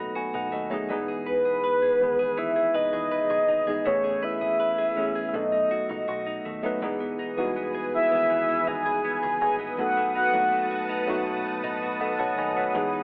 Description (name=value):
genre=contemporary R&B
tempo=81 BPM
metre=4/4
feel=straight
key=E major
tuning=A4 = 440 Hz
part: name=mellow horn-like synth lead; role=melody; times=0.0-10.9 s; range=B4 to G#5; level=-27 LUFS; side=equal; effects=chorus, tape echo
part: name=tine electric piano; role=accompaniment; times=0.0-13.0 s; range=D#3 to B5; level=-33 LUFS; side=equal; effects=none
part: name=direct-recorded clean electric guitar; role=arpeggios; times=0.0-13.0 s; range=B2 to B4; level=-36 LUFS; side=equal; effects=subtle chorus, tape echo
part: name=deep dub fingered electric bass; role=bass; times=0.0-13.0 s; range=E1 to E2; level=-46 LUFS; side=equal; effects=none
part: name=lush unison pad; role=sustained chords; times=7.2-13.0 s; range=B4 to D#6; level=-34 LUFS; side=equal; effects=chorus, phaser
room=light reverb, digital ambience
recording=telephone sound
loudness=-26 LUFS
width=mono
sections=0.0-6.8 A section; 6.8-13.0 B section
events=tine electric piano fill 0.0-0.9, 11.3-12.7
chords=0.0 B7; 0.9 Emaj7; 3.9 Amaj9; 5.3 B7; 6.8 Emaj7; 9.8 B7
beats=0.15 | 0.90 1.64 2.38 3.12 | 3.86 4.60 5.34 6.08 | 6.82 7.56 8.30 9.04 | 9.78 10.53 11.27 12.01 | 12.75